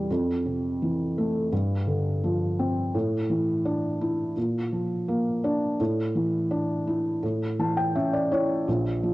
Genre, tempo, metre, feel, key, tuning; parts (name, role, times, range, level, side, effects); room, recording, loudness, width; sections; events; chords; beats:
folk; 84 BPM; 4/4; straight; A4 = 441 Hz
felt-muted upright piano; solo; 0.0-9.1 s; Bb1 to A5; -24 LUFS; equal; cassette tape
moderate spring reverb, RT60 2.3 s; home recording on cassette; -24 LUFS; side -18 dB against mid
0.0-8.7 A section
0.1 Fmaj7; 1.5 G7sus4; 2.9 Asus4; 4.4 Bb; 5.8 Asus4; 7.2 A
| 0.09 0.81 1.52 2.23 | 2.94 3.65 4.37 5.08 | 5.80 6.51 7.23 7.95 | 8.67